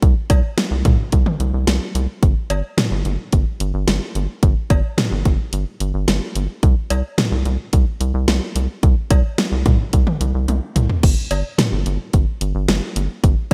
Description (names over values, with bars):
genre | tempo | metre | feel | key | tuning
synth-pop | 109 BPM | 4/4 | straight | unclear | A4 = 438 Hz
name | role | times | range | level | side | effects
rubbery square bass | bass | 0.0-13.5 s | G1 to C2 | -22 LUFS | equal | none
pop drum kit | drums | 0.0-13.5 s | cowbell, crash cymbal, hi-hat, kick drum, snare drum, toms | -19 LUFS | equal | gated reverb
room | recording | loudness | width
light reverb | bright 1980s-style digital production | -19 LUFS | mono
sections
0.0-11.0 A section; 11.0-13.5 A section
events
drum fill 10.5-11.0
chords
none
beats
| 0.02 0.57 1.12 1.68 | 2.23 2.78 3.33 3.88 | 4.43 4.98 5.53 6.08 | 6.63 7.18 7.73 8.28 | 8.83 9.38 9.93 10.48 | 11.03 11.58 12.13 12.69 | 13.23